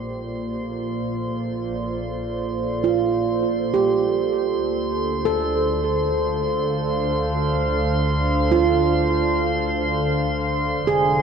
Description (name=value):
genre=ambient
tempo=free time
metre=none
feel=none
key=unclear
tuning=A4 = 436 Hz
part: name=warbly tape-like pad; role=sustained chords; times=0.0-11.2 s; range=D3 to F5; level=-24 LUFS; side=equal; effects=chorus, built-in reverb
part: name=bright studio double bass section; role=bass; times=0.0-11.2 s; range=F1 to D2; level=-29 LUFS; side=equal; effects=none
part: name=drifting glass-harmonics texture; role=texture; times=0.0-11.2 s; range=C6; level=-30 LUFS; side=equal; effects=chorus, built-in reverb
part: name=handpan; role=arpeggios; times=2.8-11.2 s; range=F4 to A4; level=-22 LUFS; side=right 5 dB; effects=tape echo
room=wet lush hall reverb, RT60 2.9 s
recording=dark, warm production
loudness=-20 LUFS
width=side -6 dB against mid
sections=0.0-11.2 A section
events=fade-in on ambient pad 0.0-11.2; fade-in on double bass section 0.0-11.2; fade-in on synth texture 0.0-11.2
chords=0.0 Bbmaj7; 4.6 Dm7